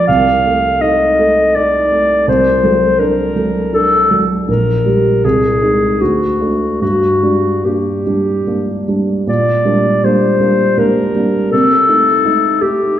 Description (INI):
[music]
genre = classical, romantic duo for clarinet and grand piano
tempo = 72-83 BPM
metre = 3/4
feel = rubato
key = G minor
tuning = A4 = 440 Hz
[part]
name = warm clarinet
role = melody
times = 0.0-13.0 s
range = F#4 to F5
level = -13 LUFS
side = left 2 dB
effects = none
[part]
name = warm grand piano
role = accompaniment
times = 0.0-13.0 s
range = Bb1 to Bb4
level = -15 LUFS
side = right 2 dB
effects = none
[sound]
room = wet recital hall reverb, RT60 1.6 s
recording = heard from further back in the room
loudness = -11 LUFS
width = side -11 dB against mid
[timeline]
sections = 0.0-9.3 A section; 9.3-13.0 B section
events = none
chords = 0.1 Adim/C; 2.3 D7/C; 4.5 Gm/Bb; 5.2 Ab/C; 6.0 D; 6.8 Gm; 9.3 Gm/Bb; 11.5 Adim/C